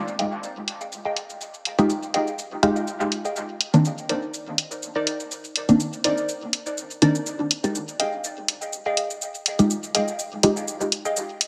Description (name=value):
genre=dub techno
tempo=123 BPM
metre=4/4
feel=swing 54% on 16ths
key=F minor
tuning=A4 = 441 Hz
part: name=electronic cabasa and hi-hat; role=drums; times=0.1-11.5 s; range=none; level=-27 LUFS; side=equal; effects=overdrive, low-pass filter on snare, small room reverb, low-pass filter on perc, low-pass filter on hats, low-pass filter on cymbals
part: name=warbly dusty pluck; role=riff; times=0.2-11.2 s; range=Eb4 to G5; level=-32 LUFS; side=equal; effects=subtle chorus, dub echo
part: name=filtered dub chord stab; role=stabs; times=1.8-10.7 s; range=Eb3 to G4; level=-24 LUFS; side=equal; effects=chorus, phaser, dub echo
room=moderate plate reverb, RT60 1.7 s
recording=echo-heavy mix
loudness=-24 LUFS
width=mono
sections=0.0-11.5 A section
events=filter sweep on synth stab 0.0-11.5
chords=0.0 Fm9; 3.4 Cm9; 7.3 Fm9